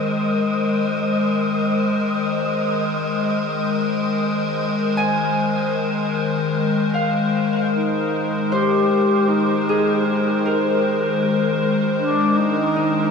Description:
ambient; 78 BPM; 3/4; straight; Ab major; A4 = 441 Hz
evolving wavetable pad; sustained chords; 0.0-13.1 s; Eb3 to C5; -19 LUFS; left 2 dB; chorus, built-in reverb
Celtic harp; arpeggios; 0.0-0.7, 5.0-13.1 s; Eb4 to Ab5; -26 LUFS; equal; tape echo
wind-like tuned noise texture; texture; 0.0-7.8 s; Eb5 to Eb6; -28 LUFS; equal; built-in reverb
wooden-headed alto flute; melody; 7.7-13.1 s; D4 to G4; -21 LUFS; equal; tape echo
wet huge ambient reverb, RT60 7.7 s; small room ambience; -18 LUFS; side -5 dB against mid
0.0-7.7 A section; 7.7-13.1 A section
0.0 Ab

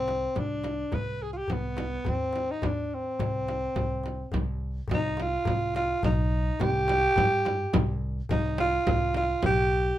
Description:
Arabic maqam ensemble; 106 BPM; 3/4; straight; C maqam nahawand; A4 = 439 Hz
growling alto saxophone; melody; 0.0-10.0 s; B3 to B4; -27 LUFS; right 1 dB
upright bass; bass; 0.0-9.9 s; B1 to G2; -31 LUFS; equal
darbuka; percussion; 0.1-9.8 s; -34 LUFS; left 2 dB
frame drum; percussion; 0.1-9.6 s; -31 LUFS; right 1 dB
light reverb; minimal, uncompressed stereo recording; -25 LUFS; side -13 dB against mid
0.0-4.9 A section; 4.9-10.0 B section

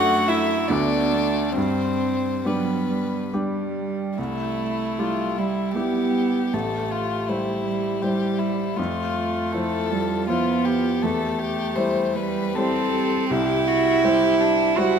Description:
classical, slow romantic movement for piano quartet; 67-85 BPM; 3/4; rubato; G major, C major from 4.2 s; A4 = 439 Hz
warm violin; melody; 0.0-15.0 s; D4 to F#5; -27 LUFS; left 8 dB
rich cello; second line; 0.0-15.0 s; F#3 to F#4; -24 LUFS; right 4 dB
clear baby grand piano; accompaniment; 0.0-15.0 s; A1 to C5; -27 LUFS; left 2 dB
dark viola; accompaniment; 0.0-15.0 s; B3 to G4; -28 LUFS; right 3 dB
moderate scoring stage reverb, RT60 1.8 s; -20 LUFS; side -7 dB against mid
0.0-4.2 A section; 4.2-15.0 B section
0.0 D/F#; 0.7 D; 1.6 G; 4.2 C; 6.5 Am7; 8.8 Fmaj7; 11.0 C/E; 13.3 C

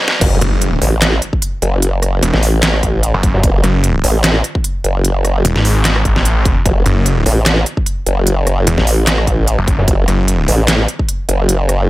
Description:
heavy wobble dubstep; 149 BPM; 4/4; swing 55% on 16ths, half-time; F# minor; A4 = 441 Hz
dubstep drum kit; drums; 0.1-11.8 s; crash cymbal, handclaps, hi-hat, rim click, snare drum; -16 LUFS; equal; high-pass filter on hats, high-pass filter on snare, high-pass filter on cymbals
formant-sweep wobble bass; bass; 0.2-11.9 s; F#1 to F#2; -13 LUFS; equal; chorus, overdrive
electronic kick drum; drums; 0.2-11.1 s; -16 LUFS; equal
impact; sound effects; 0.2-1.8 s; -25 LUFS; equal
snarling distorted saw bass; bass; 0.4-10.5 s; E1 to A1; -14 LUFS; equal; distortion, overdrive
little or no reverb; -11 LUFS; side -17 dB against mid
0.2-11.9 A section
break 0.0; drum fill 0.0; drop 0.2-11.9; impact 0.2-1.8
0.2 F#m

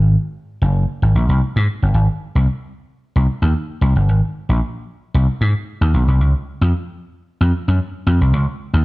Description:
funk; 113 BPM; 4/4; straight; A4 = 440 Hz
vintage slap bass; solo; 0.0-8.8 s; Gb1 to Ab2; -15 LUFS; equal
moderate echo chamber reverb, RT60 1.2 s; -15 LUFS; side -21 dB against mid
0.0-1.9 A section; 1.9-8.8 B section

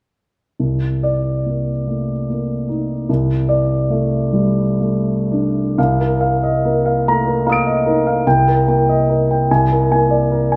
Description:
classical, impressionist solo piano; 38-51 BPM (dotted quarters); 6/8; rubato; C dorian; A4 = 445 Hz
warm concert grand piano; solo; 0.6-10.6 s; C2 to D7; -17 LUFS; equal
moderate scoring stage reverb, RT60 2.0 s; -17 LUFS; mono
0.6-5.8 A section; 5.8-10.6 B section
0.6 Cm9; 3.1 D5/C; 5.8 Cm11; 8.2 Eb/C; 9.5 Bb9/C

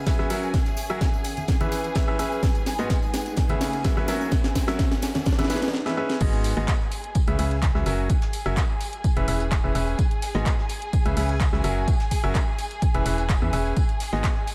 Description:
piano house; 127 BPM; 4/4; straight; G# minor; A4 = 440 Hz
dark symphonic string section; sustained chords; 0.0-14.5 s; G#4 to G#5; -37 LUFS; equal; sidechain pumping, low-pass filter
bright upright piano; riff; 0.0-14.3 s; G#2 to E5; -31 LUFS; equal; sidechain pumping, low-pass filter, dub echo
riser; sound effects; 1.3-5.7 s; -40 LUFS; equal
airy breathy pad; texture; 0.0-5.7 s; C#4 to G#5; -38 LUFS; equal; chorus, sidechain pumping
electronic kick drum; drums; 0.1-14.3 s; -26 LUFS; equal
house drum kit; drums; 0.1-14.5 s; crash cymbal, handclaps, hi-hat, snare drum; -34 LUFS; equal; overdrive
vintage brush drum kit; drums; 0.1-14.5 s; hi-hat, snare drum, tambourine; -45 LUFS; equal; sidechain pumping on hats, high-pass filter on hats, high-pass filter on snare, sidechain pumping on perc, high-pass filter on perc, high-pass filter on room
tambourine and congas; percussion; 0.1-5.7 s; -40 LUFS; equal
organ-like FM bass; bass; 6.2-14.3 s; E1 to E2; -28 LUFS; equal; tube saturation, sidechain pumping
light reverb, small room ambience; -24 LUFS; mono
0.0-6.2 A section; 6.2-14.5 B section
build-up 0.0-6.2; drum fill 0.0-5.7, 5.7-6.2; break 5.7-6.2; drop 6.2-14.5
0.3 F#7; 1.2 E6; 2.4 G#m7; 3.4 C#m7; 4.1 F#7; 5.0 E6; 6.2 G#m7; 7.2 C#m7; 7.9 F#7; 8.8 E6; 10.0 G#m7; 10.9 C#m7; 11.6 F#7; 12.6 E6; 13.8 G#m7

